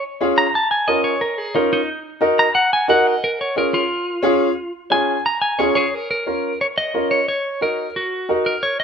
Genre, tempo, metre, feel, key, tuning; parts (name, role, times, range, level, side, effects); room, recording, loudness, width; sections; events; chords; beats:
latin; 178 BPM; 4/4; straight; Eb minor; A4 = 441 Hz
clean electric guitar; melody; 0.0-8.8 s; Eb4 to Bb5; -19 LUFS; equal; spring reverb
clear upright piano; accompaniment; 0.2-8.5 s; Db4 to Bb4; -18 LUFS; equal
moderate booth ambience, RT60 0.2 s; minimal, uncompressed stereo recording; -16 LUFS; side -7 dB against mid
0.0-5.9 A section; 5.9-8.8 B section
clean electric guitar solo 0.0-5.9
0.0 Db; 0.5 Bbm; 1.9 Ebm; 3.2 Db; 5.9 Bbm; 7.3 Ebm7
0.21 | 0.55 0.89 1.22 1.56 | 1.89 2.23 2.56 2.90 | 3.24 3.57 3.91 4.25 | 4.58 4.92 5.25 5.59 | 5.93 6.27 6.60 6.94 | 7.28 7.62 7.96 8.30 | 8.63